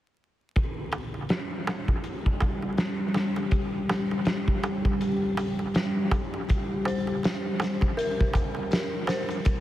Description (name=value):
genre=trip hop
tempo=81 BPM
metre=4/4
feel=swing 58% on 16ths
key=unclear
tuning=A4 = 440 Hz
part: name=deep dark ambient pad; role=sustained chords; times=1.6-9.6 s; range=G3 to G4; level=-30 LUFS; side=equal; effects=chorus, built-in reverb
part: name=huge arena drum kit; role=drums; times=0.6-9.6 s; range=hi-hat, kick drum, snare drum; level=-27 LUFS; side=equal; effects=low-pass filter on kick, low-pass filter on hats, low-pass filter on snare, low-pass filter on room
part: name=darbuka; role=percussion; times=0.6-9.6 s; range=none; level=-35 LUFS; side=right 3 dB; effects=dub echo
part: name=dark detuned synth bell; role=arpeggios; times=6.9-9.6 s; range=Bb4 to C5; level=-32 LUFS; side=left 1 dB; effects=chorus, dub echo
room=light reverb, studio ambience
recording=echo-heavy mix, vinyl crackle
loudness=-25 LUFS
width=side -14 dB against mid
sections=0.6-9.6 A section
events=none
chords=0.6 N.C.; 6.5 C5